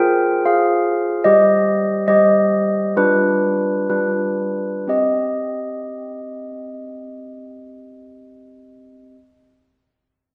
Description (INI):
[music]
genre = classical, tune for handbells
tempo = 59-77 BPM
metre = 4/4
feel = straight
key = C minor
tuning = A4 = 440 Hz
[part]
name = handbells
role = solo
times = 0.0-9.2 s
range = G3 to G5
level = -18 LUFS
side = equal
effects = none
[sound]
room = wet concert hall reverb, RT60 1.6 s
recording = lossy compression artefacts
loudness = -17 LUFS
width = mono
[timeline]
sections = 0.0-4.9 A section; 4.9-8.9 B section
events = slowing down 0.0-4.9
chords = 0.0 Fmadd9; 1.3 Cm/G; 3.0 G7; 4.9 Cm